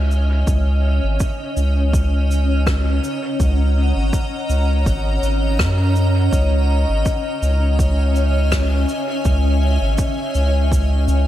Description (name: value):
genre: ambient dub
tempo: 82 BPM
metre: 4/4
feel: swing 55% on 16ths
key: unclear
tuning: A4 = 440 Hz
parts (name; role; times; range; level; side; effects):
- granular cloud pad; sustained chords; 0.0-11.3 s; C#4 to A#5; -22 LUFS; left 1 dB; built-in reverb
- round analog bass; bass; 0.0-11.3 s; G#1 to F#2; -16 LUFS; equal; none
- shaker and rim click; drums; 0.1-11.2 s; none; -28 LUFS; left 1 dB; studio ambience, dub echo
- electronic kick drum; drums; 0.5-10.9 s; none; -21 LUFS; equal; overdrive, studio ambience
room: small room ambience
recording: none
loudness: -16 LUFS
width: side -13 dB against mid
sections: 0.0-11.3 A section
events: none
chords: 0.5 D#m7; 6.3 C#madd9